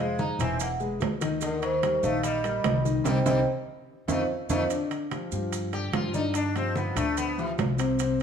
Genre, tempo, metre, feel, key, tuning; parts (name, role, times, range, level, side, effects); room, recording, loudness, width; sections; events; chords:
Afro-Cuban jazz; 146 BPM; 4/4; straight; A4 = 440 Hz
vibraphone with soft mallets; melody; 0.0-4.6 s; Bb4 to Bb5; -29 LUFS; right 3 dB
sitar; second line; 0.0-7.5 s; D3 to G4; -33 LUFS; left 3 dB
warm baby grand piano; accompaniment; 0.0-8.2 s; C3 to E5; -30 LUFS; left 4 dB
upright bass; bass; 0.0-8.2 s; E1 to G2; -31 LUFS; equal
congas; percussion; 0.2-8.2 s; -36 LUFS; equal
maracas; percussion; 0.2-8.2 s; -42 LUFS; right 8 dB
timbales; percussion; 0.2-8.2 s; -34 LUFS; right 8 dB
moderate large studio reverb, RT60 1.4 s; studio ambience; -25 LUFS; side -7 dB against mid
0.0-4.7 A section; 4.7-8.2 B section
band accent 3.1-4.7; drum fill 4.1-4.7; sitar solo 4.7-8.2
0.0 Fm; 0.6 E; 1.4 Eb; 3.1 Cm7; 3.9 F7; 4.7 G5